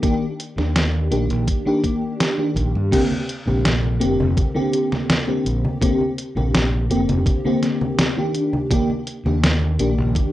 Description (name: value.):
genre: vaporwave.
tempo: 83 BPM.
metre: 4/4.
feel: straight.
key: Bb major.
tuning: A4 = 440 Hz.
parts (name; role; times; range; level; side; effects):
FM electric piano with soft pad layer; accompaniment; 0.0-10.3 s; D3 to G4; -21 LUFS; left 1 dB; ensemble chorus, cassette tape, analog delay.
detuned 8-bit digital drum machine; drums; 0.0-10.3 s; congas, crash cymbal, hi-hat, snare drum; -23 LUFS; equal; none.
electronic kick drum; drums; 0.0-10.3 s; none; -21 LUFS; equal; none.
overdriven fingered electric bass; bass; 0.6-10.1 s; F1 to G2; -20 LUFS; equal; tube saturation.
room: light reverb.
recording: rough home demo mix, cassette tape, nothing above 10.8 kHz.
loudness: -18 LUFS.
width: side -14 dB against mid.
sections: 0.0-2.9 A section; 2.9-10.3 B section.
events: none.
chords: 0.0 Ebmaj7; 2.9 Bb69; 8.3 Ebmaj7.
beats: | 0.04 0.76 1.48 2.20 | 2.93 3.65 4.37 5.10 | 5.82 6.54 7.26 7.99 | 8.71 9.43 10.16.